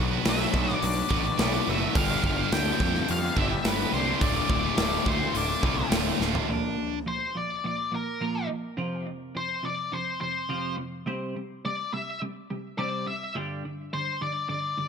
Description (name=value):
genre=quiet-loud alternative rock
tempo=105 BPM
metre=4/4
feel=straight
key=unclear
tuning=A4 = 440 Hz
part: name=scooped high-gain guitar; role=riff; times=0.0-7.0 s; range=D2 to B4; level=-31 LUFS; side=right 17 dB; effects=distortion
part: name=thick fuzz guitar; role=riff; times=0.0-7.0 s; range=D2 to B4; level=-31 LUFS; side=left 13 dB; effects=distortion
part: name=fuzz picked electric bass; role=bass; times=0.0-6.4 s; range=D1 to F2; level=-30 LUFS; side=right 1 dB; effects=overdrive
part: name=octave-fuzz lead guitar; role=melody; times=0.3-14.9 s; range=Bb4 to G5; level=-31 LUFS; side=left 3 dB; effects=distortion
part: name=big rock drum kit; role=drums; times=0.3-6.5 s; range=hi-hat, kick drum, snare drum, toms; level=-28 LUFS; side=right 1 dB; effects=none
part: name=twelve-string electric guitar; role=arpeggios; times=6.5-14.9 s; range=F2 to C4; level=-33 LUFS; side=right 2 dB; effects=wide subtle chorus
room=light reverb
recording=none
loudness=-25 LUFS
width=side -6 dB against mid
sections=0.0-6.5 A section; 6.5-14.9 B section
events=drum fill 6.2; half time 6.5-14.9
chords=0.0 Bm; 2.0 G; 4.2 Dm; 6.5 Bb5; 8.8 F5; 11.1 C5; 13.3 G5